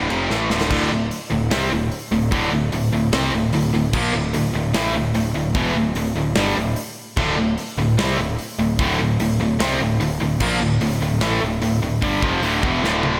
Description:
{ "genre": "heavy metal", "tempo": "148 BPM", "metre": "4/4", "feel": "straight", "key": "D minor", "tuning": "A4 = 445 Hz", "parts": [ { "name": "distorted electric guitar", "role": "riff", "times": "0.0-13.2 s", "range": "D2 to C4", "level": "-27 LUFS", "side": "equal", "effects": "overdrive" }, { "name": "tight distorted guitar", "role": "riff", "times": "0.0-13.2 s", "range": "D2 to C4", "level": "-25 LUFS", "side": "equal", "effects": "distortion" }, { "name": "fuzz picked electric bass", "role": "bass", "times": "0.0-13.2 s", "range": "D1 to C2", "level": "-28 LUFS", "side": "equal", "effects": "overdrive" }, { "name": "modern studio drum kit", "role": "drums", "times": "0.1-13.1 s", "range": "crash cymbal, hi-hat, kick drum, ride cymbal, snare drum, toms", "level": "-29 LUFS", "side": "equal", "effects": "none" }, { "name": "distorted electric guitar", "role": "riff", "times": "0.7-13.2 s", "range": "D2 to C4", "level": "-28 LUFS", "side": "equal", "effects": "none" } ], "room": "moderate scoring stage reverb, RT60 1.8 s, small room ambience", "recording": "big arena sound", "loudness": "-20 LUFS", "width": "mono", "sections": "0.7-13.2 A section", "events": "drum fill 0.3-0.7, 12.8-13.2; half time 0.7-13.2", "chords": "0.0 Dm", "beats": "0.31 | 0.71 1.11 1.51 1.91 | 2.32 2.72 3.12 3.53 | 3.93 4.34 4.74 5.15 | 5.55 5.96 6.36 6.77 | 7.17 7.58 7.98 8.39 | 8.79 9.20 9.60 10.01 | 10.41 10.81 11.22 11.62 | 12.03 12.43 12.83" }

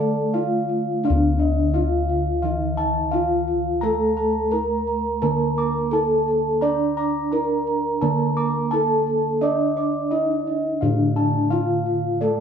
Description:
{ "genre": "Javanese gamelan", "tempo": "86 BPM", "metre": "4/4", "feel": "straight", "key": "D pelog", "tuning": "A4 = 440 Hz", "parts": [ { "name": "gamelan-type bronze metallophone", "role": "melody", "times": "0.0-12.4 s", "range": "D4 to D5", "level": "-23 LUFS", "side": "left 1 dB", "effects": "none" }, { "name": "Celtic harp", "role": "second line", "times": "0.0-0.9 s", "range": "none", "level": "barely audible", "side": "none", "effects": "none" }, { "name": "gamelan-type bronze metallophone", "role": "accompaniment", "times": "0.0-12.4 s", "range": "D3 to D4", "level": "-27 LUFS", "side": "right 3 dB", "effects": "none" }, { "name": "gamelan-type bossed gongs", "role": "arpeggios", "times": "0.0-12.4 s", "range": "D5 to D6", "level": "-28 LUFS", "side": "left 2 dB", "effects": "none" }, { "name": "gamelan-type bronze metallophone", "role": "arpeggios", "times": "0.0-12.4 s", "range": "D5 to D6", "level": "-29 LUFS", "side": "right 4 dB", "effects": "none" }, { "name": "gamelan-type bossed gongs", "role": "bass", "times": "0.0-12.4 s", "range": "D2 to D5", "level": "-25 LUFS", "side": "equal", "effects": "none" } ], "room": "moderate large studio reverb, RT60 1.1 s", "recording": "band playing live in one room", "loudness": "-19 LUFS", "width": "side -7 dB against mid", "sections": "0.0-1.0 A section; 1.0-12.4 B section", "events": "none", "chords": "none", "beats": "0.34 | 1.04 1.74 2.44 3.13 | 3.83 4.53 5.23 5.92 | 6.62 7.32 8.02 8.71 | 9.41 10.11 10.81 11.51 | 12.20" }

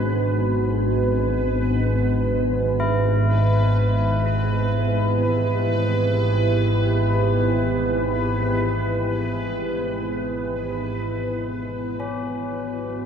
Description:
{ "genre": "dark ambient drone", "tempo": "free time", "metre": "none", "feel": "none", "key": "unclear", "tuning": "A4 = 445 Hz", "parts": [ { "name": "deep dark ambient pad", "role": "sustained chords", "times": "0.0-13.1 s", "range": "D3 to B4", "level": "-25 LUFS", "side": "right 1 dB", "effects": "chorus, built-in reverb, shimmer reverb" }, { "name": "organ-like drone", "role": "drone", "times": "0.0-13.1 s", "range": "G#1 to G#2", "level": "-22 LUFS", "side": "equal", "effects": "ensemble chorus, built-in reverb" }, { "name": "bubbling stepped-filter texture", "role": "texture", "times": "0.0-13.1 s", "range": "B4", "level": "-28 LUFS", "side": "right 1 dB", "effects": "chorus, built-in reverb, shimmer reverb" }, { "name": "tubular bells", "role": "arpeggios", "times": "2.8-13.1 s", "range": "C#4 to E4", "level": "-31 LUFS", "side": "left 3 dB", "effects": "ping-pong delay, shimmer reverb" } ], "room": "wet cathedral reverb, RT60 6.7 s", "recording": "none", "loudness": "-20 LUFS", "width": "side -7 dB against mid", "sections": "0.0-13.1 A section", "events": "fade-out 8.0-13.1", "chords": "0.0 Bm; 2.8 Em; 10.5 Bm", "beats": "free time" }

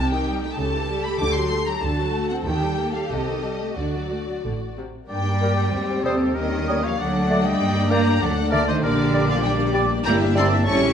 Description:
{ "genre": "quick classical-period movement for symphony orchestra", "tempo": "88-99 BPM", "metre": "2/4", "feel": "rubato", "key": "G minor", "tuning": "A4 = 440 Hz", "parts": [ { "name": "warm studio violin section", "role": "melody", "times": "0.0-10.9 s", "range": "C5 to D6", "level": "-29 LUFS", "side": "left 4 dB", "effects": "none" }, { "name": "rich studio violin section", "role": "second line", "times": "0.0-10.9 s", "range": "F#4 to E5", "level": "-30 LUFS", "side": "left 3 dB", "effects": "none" }, { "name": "rich studio viola section", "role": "accompaniment", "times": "0.0-10.9 s", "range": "C3 to G4", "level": "-27 LUFS", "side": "equal", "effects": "none" }, { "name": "clear studio cello section", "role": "bass", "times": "0.0-10.9 s", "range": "A2 to C#4", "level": "-26 LUFS", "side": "right 2 dB", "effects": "none" }, { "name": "rich studio double bass section", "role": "bass", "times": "0.0-10.9 s", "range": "G1 to G2", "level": "-26 LUFS", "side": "right 2 dB", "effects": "none" }, { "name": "warm oboe", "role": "second line", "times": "5.1-10.8 s", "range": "A4 to A5", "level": "-29 LUFS", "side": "right 1 dB", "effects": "none" }, { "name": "dark French horn section", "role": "sustained chords", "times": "5.1-10.9 s", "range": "G3 to E4", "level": "-28 LUFS", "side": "left 5 dB", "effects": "none" }, { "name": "large flute ensemble", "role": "second line", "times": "5.4-10.5 s", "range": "D6 to E6", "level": "-31 LUFS", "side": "equal", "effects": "none" }, { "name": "warm clarinet", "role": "second line", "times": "5.4-10.5 s", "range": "Bb4 to D5", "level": "-31 LUFS", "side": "left 1 dB", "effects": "none" }, { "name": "mellow bassoon", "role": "accompaniment", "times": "5.4-10.5 s", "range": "G3 to Bb3", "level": "-29 LUFS", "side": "right 1 dB", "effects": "none" } ], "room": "moderate recital hall reverb, RT60 1.6 s", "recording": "dark, warm production", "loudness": "-19 LUFS", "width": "side -8 dB against mid", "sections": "0.0-5.1 A section; 5.1-10.9 B section", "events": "none", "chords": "0.0 Am7b5/C; 0.6 A7/C#; 1.2 D; 1.8 D7; 2.5 Eb; 3.1 Am7b5/C; 3.8 D; 5.1 Gm; 5.7 Cm/Eb; 6.4 Eb7; 7.0 D; 7.6 Gm; 8.2 D; 8.8 Gm/Bb; 10.1 Em7b5/G", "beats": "0.58 | 1.20 1.83 | 2.46 3.10 | 3.77 4.44 | 5.10 5.74 | 6.37 7.00 | 7.61 8.22 | 8.84 9.46 | 10.07 10.68" }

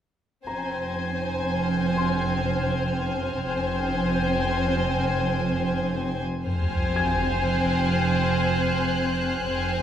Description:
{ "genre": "cinematic", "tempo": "60 BPM", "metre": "3/4", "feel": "straight", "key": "F minor", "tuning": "A4 = 441 Hz", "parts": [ { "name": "rich symphonic violin section", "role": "melody", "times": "0.5-9.8 s", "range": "Ab5", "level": "-31 LUFS", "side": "left 3 dB", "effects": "none" }, { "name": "rich studio violin section", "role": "second line", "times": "0.5-9.8 s", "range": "C4 to C5", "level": "-26 LUFS", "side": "left 1 dB", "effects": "none" }, { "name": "rich studio cello section", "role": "bass", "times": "0.5-9.8 s", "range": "F2", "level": "-28 LUFS", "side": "right 3 dB", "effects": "none" }, { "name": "rich studio double bass section", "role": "bass", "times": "0.5-9.8 s", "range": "F1", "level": "-29 LUFS", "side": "right 2 dB", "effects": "none" }, { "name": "clear baby grand piano", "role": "texture", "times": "0.5-9.8 s", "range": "Ab5 to Ab6", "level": "-35 LUFS", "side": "left 3 dB", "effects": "none" }, { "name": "rich studio violin section", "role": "texture", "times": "0.5-9.8 s", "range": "C6 to G6", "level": "-38 LUFS", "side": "left 1 dB", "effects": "none" }, { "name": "sub drop", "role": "sound effects", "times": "6.5-9.5 s", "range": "none", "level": "-30 LUFS", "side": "left 1 dB", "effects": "none" } ], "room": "wet recital hall reverb, RT60 1.4 s", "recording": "recorded in a church or concert hall", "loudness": "-22 LUFS", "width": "side -9 dB against mid", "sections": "0.5-6.5 A section; 6.5-9.8 B section", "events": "impact 6.5-9.5", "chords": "0.5 Fm", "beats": "| 0.46 1.46 2.46 | 3.46 4.46 5.46 | 6.46 7.46 8.46 | 9.46" }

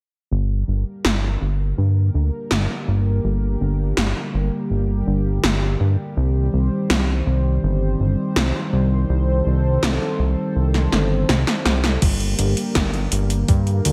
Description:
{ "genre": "synthwave", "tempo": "82 BPM", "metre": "4/4", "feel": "straight", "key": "G minor", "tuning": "A4 = 440 Hz", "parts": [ { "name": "warm analog pad", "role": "sustained chords", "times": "0.3-13.9 s", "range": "D3 to C5", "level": "-27 LUFS", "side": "equal", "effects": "chorus, sidechain pumping" }, { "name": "fat analog bass", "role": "bass", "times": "0.3-13.9 s", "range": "G1 to G2", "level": "-21 LUFS", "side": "equal", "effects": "none" }, { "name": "80s electronic pad drums", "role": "drums", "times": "1.0-13.9 s", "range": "crash cymbal, hi-hat, snare drum", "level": "-25 LUFS", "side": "equal", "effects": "gated reverb" }, { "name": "electronic kick drum", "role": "drums", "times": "12.0-13.6 s", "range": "none", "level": "-20 LUFS", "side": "equal", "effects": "overdrive" } ], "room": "little or no reverb", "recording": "none", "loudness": "-20 LUFS", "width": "mono", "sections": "0.3-12.0 A section; 12.0-13.9 B section", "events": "filter sweep on analog synth bass 0.3-12.0; filter sweep on analog synth pad 0.3-12.0; drum fill 10.9-12.0", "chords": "0.3 Gm; 6.2 Cm; 12.0 Gm", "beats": "| 0.32 1.05 1.78 2.51 | 3.24 3.97 4.71 5.44 | 6.17 6.90 7.63 8.37 | 9.10 9.83 10.56 11.29 | 12.02 12.76 13.49" }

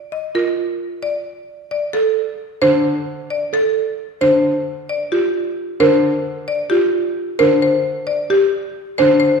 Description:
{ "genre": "classical, minimalist pattern music", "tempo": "264 BPM (eighths)", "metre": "7/8", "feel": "straight", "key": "unclear", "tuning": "A4 = 440 Hz", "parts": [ { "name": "marimba with hard mallets", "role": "melody", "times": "0.1-9.4 s", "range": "G4 to Eb5", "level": "-20 LUFS", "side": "left 6 dB", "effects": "none" }, { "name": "buzzing marimba with soft mallets", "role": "arpeggios", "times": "0.3-9.3 s", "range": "F4 to C5", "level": "-18 LUFS", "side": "right 6 dB", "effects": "none" }, { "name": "warm concert grand piano", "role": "accompaniment", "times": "2.6-9.3 s", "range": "D3", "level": "-19 LUFS", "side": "left 3 dB", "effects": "none" } ], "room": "wet scoring stage reverb, RT60 1.6 s", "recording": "recorded in a church or concert hall", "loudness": "-15 LUFS", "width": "side -5 dB against mid", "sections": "0.0-9.4 A section", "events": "none", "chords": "0.0 F7sus4; 1.3 Amadd11; 4.4 N.C.; 7.6 D7sus4", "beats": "0.12 0.35 0.58 0.81 1.03 | 1.26 1.49 1.71 1.94 2.17 2.40 2.62 | 2.85 3.08 3.31 3.53 3.76 3.99 4.21 | 4.44 4.67 4.90 5.12 5.35 5.58 5.80 | 6.03 6.26 6.49 6.71 6.94 7.17 7.40 | 7.62 7.85 8.08 8.30 8.53 8.76 8.99 | 9.21" }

